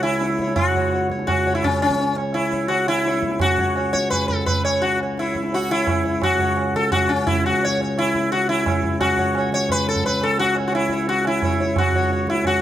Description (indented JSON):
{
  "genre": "indian classical, Hindustani",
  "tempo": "172 BPM",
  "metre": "4/4",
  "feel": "straight",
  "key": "C# raga malkauns",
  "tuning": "A4 = 438 Hz",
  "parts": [
    { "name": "sitar", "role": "melody", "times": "0.0-12.6 s", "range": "C#4 to C#5", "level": "-19 LUFS", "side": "left 1 dB", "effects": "none" },
    { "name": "pedal harmonium", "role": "drone", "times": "0.0-12.6 s", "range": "C#2 to C#3", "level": "-26 LUFS", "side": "left 1 dB", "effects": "none" },
    { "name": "tabla", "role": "percussion", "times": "0.0-12.6 s", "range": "none", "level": "-25 LUFS", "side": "right 4 dB", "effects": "none" }
  ],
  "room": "moderate scoring stage reverb, RT60 1.5 s",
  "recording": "close, detailed microphones",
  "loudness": "-18 LUFS",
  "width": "side -11 dB against mid",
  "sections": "0.0-6.2 A section; 6.2-12.6 B section",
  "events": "speeding up 0.0-12.6",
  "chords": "none"
}